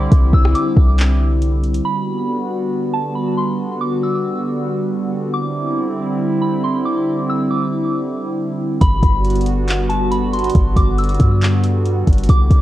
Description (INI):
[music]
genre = hip hop, atmospheric cloud-rap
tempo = 138 BPM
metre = 4/4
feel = half-time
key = G major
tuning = A4 = 438 Hz
[part]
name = soft synth bell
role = melody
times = 0.0-12.6 s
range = A5 to E6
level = -25 LUFS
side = right 1 dB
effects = chorus, phaser, low-pass filter, digital delay
[part]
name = hollow soft pad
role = sustained chords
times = 0.0-12.6 s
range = D3 to F#4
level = -19 LUFS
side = equal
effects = chorus, sidechain pumping
[part]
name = clean 808-style bass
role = bass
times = 0.0-1.8, 8.8-12.6 s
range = G1 to G2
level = -15 LUFS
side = equal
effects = none
[part]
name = smooth R&B drum kit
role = drums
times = 0.1-1.8, 8.8-12.6 s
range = handclaps, hi-hat, kick drum, rim click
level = -16 LUFS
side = equal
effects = none
[sound]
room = little or no reverb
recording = worn, warbling old tape, cassette tape, warbly pitch drift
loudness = -15 LUFS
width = side -14 dB against mid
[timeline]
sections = 0.0-1.9 A section; 1.9-8.8 B section; 8.8-12.6 C section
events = none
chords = 0.0 Cadd9; 1.9 Gmaj7; 5.3 Cadd9; 8.8 Gmaj7